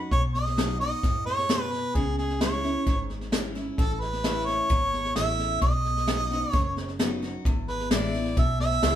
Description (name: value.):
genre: honky-tonk and classic country.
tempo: 131 BPM.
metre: 4/4.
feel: straight.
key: E major.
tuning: A4 = 439 Hz.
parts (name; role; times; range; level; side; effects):
picked steel-string acoustic guitar; accompaniment; 0.0-9.0 s; E2 to F#4; -32 LUFS; left 2 dB; none.
warm harmonica; melody; 0.1-9.0 s; G#4 to E5; -27 LUFS; right 1 dB; none.
vintage muted fingered electric bass; bass; 0.1-9.0 s; F#1 to F#2; -31 LUFS; equal; none.
vintage brush drum kit; drums; 0.1-8.9 s; hi-hat, kick drum, snare drum; -27 LUFS; equal; none.
room: moderate studio reverb, RT60 0.7 s.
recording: band playing live in one room.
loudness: -24 LUFS.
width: side -11 dB against mid.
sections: 0.0-7.5 A section; 7.5-9.0 B section.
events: harmonica solo 7.5-9.0.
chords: 0.0 B; 2.0 C#m; 3.8 A; 5.6 B; 7.5 E.